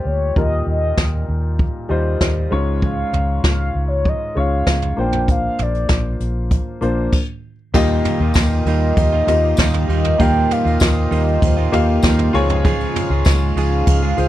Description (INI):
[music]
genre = piano-driven pop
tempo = 98 BPM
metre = 4/4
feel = straight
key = Eb mixolydian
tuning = A4 = 441 Hz
[part]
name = mellow horn-like synth lead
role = melody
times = 0.0-14.3 s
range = Db5 to G5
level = -22 LUFS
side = equal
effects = chorus, slapback echo
[part]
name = warm baby grand piano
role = accompaniment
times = 0.0-14.3 s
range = Ab2 to F5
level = -22 LUFS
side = left 2 dB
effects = none
[part]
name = vintage muted fingered electric bass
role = bass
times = 0.1-14.3 s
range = Bb1 to Eb2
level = -19 LUFS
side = equal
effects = none
[part]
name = jazz brush drum kit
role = drums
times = 0.4-14.3 s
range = crash cymbal, hi-hat, kick drum, ride cymbal, snare drum, toms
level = -19 LUFS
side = equal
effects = none
[part]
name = chorused pulse-width pad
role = sustained chords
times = 7.7-14.3 s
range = Eb3 to C5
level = -28 LUFS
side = equal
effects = phaser
[part]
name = direct-recorded clean electric guitar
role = riff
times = 7.7-14.3 s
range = Db3 to Ab4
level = -24 LUFS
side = right 9 dB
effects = none
[part]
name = tambourine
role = percussion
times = 8.3-13.4 s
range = none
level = -33 LUFS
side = left 6 dB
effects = none
[sound]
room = little or no reverb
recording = none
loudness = -15 LUFS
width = side -13 dB against mid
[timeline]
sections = 0.0-7.7 A section; 7.7-14.3 B section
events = stop 7.1-7.7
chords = 0.0 Ebadd9; 2.5 Db; 5.0 Bbadd9; 7.7 Ebadd9; 12.3 Db